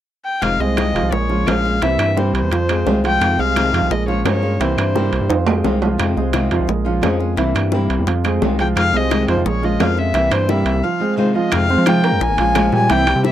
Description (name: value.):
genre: latin, Cuban son and guajira.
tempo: 173 BPM.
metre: 4/4.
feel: straight.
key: F minor.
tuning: A4 = 440 Hz.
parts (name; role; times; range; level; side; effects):
warm violin; melody; 0.2-5.7, 8.6-13.3 s; C5 to Ab5; -20 LUFS; left 2 dB; none.
nylon-string guitar; accompaniment; 0.4-13.3 s; C3 to F4; -21 LUFS; left 3 dB; none.
rubbery square bass; bass; 0.4-13.3 s; F1 to F3; -20 LUFS; equal; none.
bongos; percussion; 0.4-13.3 s; none; -24 LUFS; left 8 dB; none.
claves; percussion; 0.4-13.2 s; none; -32 LUFS; left 5 dB; none.
timbales; percussion; 0.4-13.2 s; none; -23 LUFS; right 7 dB; none.
warm grand piano; arpeggios; 0.6-13.3 s; E3 to C6; -21 LUFS; right 5 dB; none.
room: light reverb.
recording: dry, close 1970s-style studio recording.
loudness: -15 LUFS.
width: side -11 dB against mid.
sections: 0.4-11.5 A section; 11.5-13.3 B section.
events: drum fill 5.3-6.0.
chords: 0.4 Fm7; 1.1 Bbm7; 1.8 C7; 2.5 Fm7; 3.9 Bbm7; 4.6 C7; 5.3 Fm7; 6.7 Bbm7; 7.4 C7; 8.1 Fm7; 9.5 Bbm7; 10.1 C7; 10.8 Fm7; 12.2 Bbm7.